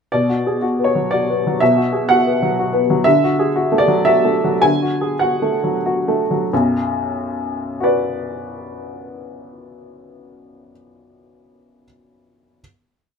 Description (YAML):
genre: neoclassical minimalist piano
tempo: 89-126 BPM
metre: 3/4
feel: rubato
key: B dorian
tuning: A4 = 438 Hz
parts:
  - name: clear upright piano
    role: solo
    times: 0.1-12.6 s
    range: B1 to G#5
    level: -15 LUFS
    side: equal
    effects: none
room: light reverb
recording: minimal, uncompressed stereo recording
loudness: -15 LUFS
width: side -6 dB against mid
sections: 0.1-6.5 A section; 6.5-10.4 final chord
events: slowing down 2.3-6.5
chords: 0.1 Bm; 3.1 Dadd9; 6.5 Bm